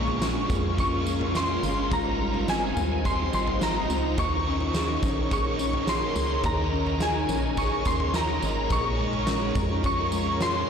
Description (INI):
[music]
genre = dream pop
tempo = 106 BPM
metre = 4/4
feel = straight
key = Eb mixolydian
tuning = A4 = 440 Hz
[part]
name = shimmering bell with halo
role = melody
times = 0.0-10.7 s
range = Ab5 to Db6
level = -29 LUFS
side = left 1 dB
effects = ensemble chorus, tape echo
[part]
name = biting overdriven guitar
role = accompaniment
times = 0.0-10.7 s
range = Bb2 to Ab4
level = -34 LUFS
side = right 4 dB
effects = harmonic tremolo, wide subtle chorus
[part]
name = shimmering ambient pad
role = sustained chords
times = 0.0-10.7 s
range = Db4 to Bb5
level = -31 LUFS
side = right 1 dB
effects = chorus, built-in reverb
[part]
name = mellow electric guitar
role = arpeggios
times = 0.0-10.7 s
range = Ab2 to Bb4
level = -32 LUFS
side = left 3 dB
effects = ensemble chorus, tape echo
[part]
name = organ-like FM bass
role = bass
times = 0.0-10.6 s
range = G1 to F2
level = -30 LUFS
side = equal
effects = none
[part]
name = huge arena drum kit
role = drums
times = 0.1-10.5 s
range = kick drum, snare drum, tambourine, toms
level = -30 LUFS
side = right 1 dB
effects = none
[sound]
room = moderate lush hall reverb, RT60 2.7 s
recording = blown-out, overdriven recording, overdrive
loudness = -23 LUFS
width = side -7 dB against mid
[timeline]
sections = 0.0-10.7 A section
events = none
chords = 0.0 Bbm7; 1.9 Abmaj7; 4.2 Eb7sus4; 8.7 Bbm7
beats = 0.22 0.78 1.35 | 1.91 2.48 3.05 3.61 | 4.18 4.75 5.31 5.88 | 6.44 7.01 7.58 8.14 | 8.71 9.27 9.84 10.40